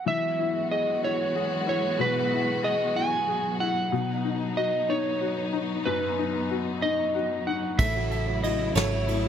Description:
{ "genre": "six-eight pop ballad", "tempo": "62 BPM (dotted quarters)", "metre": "6/8", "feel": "straight", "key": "E major", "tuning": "A4 = 440 Hz", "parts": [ { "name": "electric slide guitar", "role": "melody", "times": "0.0-9.3 s", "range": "B4 to G#5", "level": "-27 LUFS", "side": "right 2 dB", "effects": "none" }, { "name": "felt-muted upright piano", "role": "accompaniment", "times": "0.1-9.3 s", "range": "F#2 to A4", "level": "-30 LUFS", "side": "left 10 dB", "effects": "none" }, { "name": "warm studio string section", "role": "sustained chords", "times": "0.1-9.3 s", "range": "C#3 to F#4", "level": "-31 LUFS", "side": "equal", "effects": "none" }, { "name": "fingerpicked steel-string acoustic guitar", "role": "arpeggios", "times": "7.8-9.3 s", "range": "A3 to C#5", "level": "-34 LUFS", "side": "right 14 dB", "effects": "none" }, { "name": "vintage muted fingered electric bass", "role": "bass", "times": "7.8-9.3 s", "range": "G#1 to A1", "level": "-29 LUFS", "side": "equal", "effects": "none" }, { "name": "soft brush drum kit", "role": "drums", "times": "7.8-9.2 s", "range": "kick drum, ride cymbal, snare drum", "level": "-29 LUFS", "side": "right 1 dB", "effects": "none" } ], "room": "light reverb, small room ambience", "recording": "none", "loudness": "-24 LUFS", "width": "side -8 dB against mid", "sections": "0.1-9.3 A section", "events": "none", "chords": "0.1 Eadd9; 3.9 B; 7.8 F#m7" }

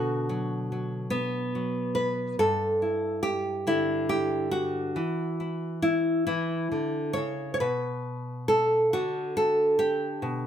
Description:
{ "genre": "folk, solo fingerstyle acoustic guitar", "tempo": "46 BPM (dotted quarters)", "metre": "6/8", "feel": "rubato", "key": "B minor", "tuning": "A4 = 440 Hz", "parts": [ { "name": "nylon-string guitar", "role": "solo", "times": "0.0-10.5 s", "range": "G2 to C#5", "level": "-25 LUFS", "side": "equal", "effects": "none" } ], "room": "light reverb", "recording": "minimal, uncompressed stereo recording", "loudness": "-25 LUFS", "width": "side -9 dB against mid", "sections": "0.0-10.5 A section", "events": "none", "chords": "0.0 Bm; 2.4 G5; 5.0 Esus2; 7.6 Bm" }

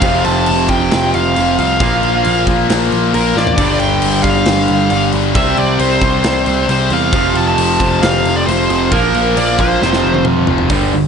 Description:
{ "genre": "hard rock", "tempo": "135 BPM", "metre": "4/4", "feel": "straight", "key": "unclear", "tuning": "A4 = 440 Hz", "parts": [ { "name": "high-gain lead guitar", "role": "melody", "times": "0.0-10.2 s", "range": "Bb4 to A5", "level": "-18 LUFS", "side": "equal", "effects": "distortion" }, { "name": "crunchy overdriven guitar", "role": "riff", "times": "0.0-11.1 s", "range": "F2 to C4", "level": "-18 LUFS", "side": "right 14 dB", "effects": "none" }, { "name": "distorted electric guitar", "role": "riff", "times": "0.0-11.1 s", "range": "F2 to C4", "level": "-20 LUFS", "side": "equal", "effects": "overdrive" }, { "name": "tight distorted guitar", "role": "riff", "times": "0.0-11.1 s", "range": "F2 to C4", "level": "-18 LUFS", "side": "left 11 dB", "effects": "distortion" }, { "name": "picked electric bass", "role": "bass", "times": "0.0-11.1 s", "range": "F1 to E2", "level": "-19 LUFS", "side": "equal", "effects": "none" }, { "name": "big rock drum kit", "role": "drums", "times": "0.0-10.8 s", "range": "crash cymbal, hi-hat, kick drum, snare drum, toms", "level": "-19 LUFS", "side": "equal", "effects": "none" } ], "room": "light reverb", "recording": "nothing above 10.3 kHz", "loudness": "-11 LUFS", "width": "side -6 dB against mid", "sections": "0.0-10.7 A section", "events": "drum fill 3.4, 9.8-10.7", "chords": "0.0 F; 1.8 Bb5; 3.6 G5; 5.4 C5; 7.1 F; 8.9 Bb5; 9.8 F5" }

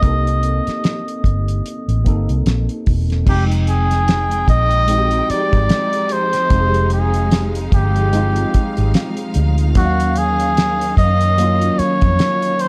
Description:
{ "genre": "R&B, neo-soul", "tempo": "74 BPM", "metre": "4/4", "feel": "swing 58% on 16ths", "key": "unclear", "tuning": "A4 = 440 Hz", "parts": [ { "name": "trumpet with cup mute", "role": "melody", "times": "0.0-12.7 s", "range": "Gb4 to Eb5", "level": "-22 LUFS", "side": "equal", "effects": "none" }, { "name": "tine electric piano", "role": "accompaniment", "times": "0.0-12.7 s", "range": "Gb3 to G5", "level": "-25 LUFS", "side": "equal", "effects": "overdrive, ensemble chorus" }, { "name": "vintage muted fingered electric bass", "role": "bass", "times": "0.0-12.2 s", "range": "E1 to Gb2", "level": "-20 LUFS", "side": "equal", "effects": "none" }, { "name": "cloth-damped thuddy drum kit", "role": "drums", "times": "0.0-12.7 s", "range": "crash cymbal, hi-hat, kick drum, snare drum", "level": "-20 LUFS", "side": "equal", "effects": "none" }, { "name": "rich symphonic string section", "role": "sustained chords", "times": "3.3-12.7 s", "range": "Eb3 to G5", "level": "-30 LUFS", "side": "equal", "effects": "none" } ], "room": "moderate studio reverb, RT60 0.8 s", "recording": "dark, warm production", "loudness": "-16 LUFS", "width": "mono", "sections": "0.0-3.3 A section; 3.3-12.7 B section", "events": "none", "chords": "0.0 Cm9; 3.3 Fm9; 9.8 Ebm9" }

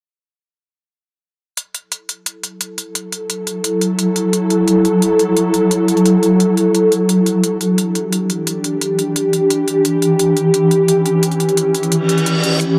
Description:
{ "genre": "dark technical drum and bass", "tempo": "174 BPM", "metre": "4/4", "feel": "straight", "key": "F# phrygian", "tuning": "A4 = 439 Hz", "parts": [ { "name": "swarming drone", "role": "sustained chords", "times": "3.2-12.8 s", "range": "E3 to A4", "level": "-16 LUFS", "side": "equal", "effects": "built-in reverb, vintage 12-bit sampler grit" }, { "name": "electronic hi-hat", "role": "drums", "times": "1.6-12.7 s", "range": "none", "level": "-24 LUFS", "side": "equal", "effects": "none" }, { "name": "reverse cymbal", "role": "sound effects", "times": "12.0-12.6 s", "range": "none", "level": "-22 LUFS", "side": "equal", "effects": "none" } ], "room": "moderate plate reverb, RT60 1.6 s", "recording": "none", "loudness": "-15 LUFS", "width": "mono", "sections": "1.6-12.8 A section", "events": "reverse cymbal 12.0-12.6", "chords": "1.6 F#m7; 7.1 Em7" }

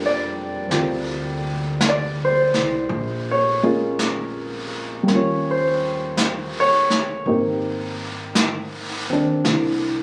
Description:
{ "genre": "jazz ballad", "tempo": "55 BPM", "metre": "4/4", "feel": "swing 68% on 8ths", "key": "unclear", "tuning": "A4 = 438 Hz", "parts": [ { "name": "dark baby grand piano", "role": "accompaniment", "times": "0.0-10.0 s", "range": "G3 to D5", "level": "-23 LUFS", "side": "equal", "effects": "none" }, { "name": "upright bass", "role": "bass", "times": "0.0-10.0 s", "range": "Ab1 to F2", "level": "-30 LUFS", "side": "equal", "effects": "none" }, { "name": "jazz brush drum kit", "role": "drums", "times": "0.7-10.0 s", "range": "brushed snare drum, hi-hat, snare drum", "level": "-28 LUFS", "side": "equal", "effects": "none" } ], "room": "light reverb", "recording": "recorded on a phone in the room, club reverb, compression", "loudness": "-21 LUFS", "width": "mono", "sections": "0.0-10.0 A section", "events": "none", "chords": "0.0 Gm7; 2.9 Bbm7; 5.1 Eb13; 7.3 Abmaj9" }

